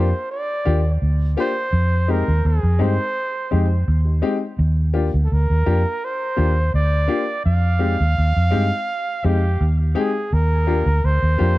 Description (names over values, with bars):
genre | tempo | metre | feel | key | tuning
lovers rock reggae | 84 BPM | 4/4 | straight | Eb major | A4 = 440 Hz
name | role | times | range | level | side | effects
breathy flugelhorn | melody | 0.0-11.6 s | G4 to F5 | -24 LUFS | right 2 dB | tape echo
warm baby grand piano | accompaniment | 0.0-11.5 s | Ab3 to G4 | -24 LUFS | left 5 dB | none
vintage muted fingered electric bass | bass | 0.0-11.6 s | D2 to G2 | -17 LUFS | equal | none
room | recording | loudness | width
studio reverb | none | -17 LUFS | side -17 dB against mid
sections
0.0-11.6 A section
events
none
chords
0.0 Ebmaj9; 1.7 Fm7; 4.6 Ebmaj9; 7.5 Fm7; 10.3 Ebmaj9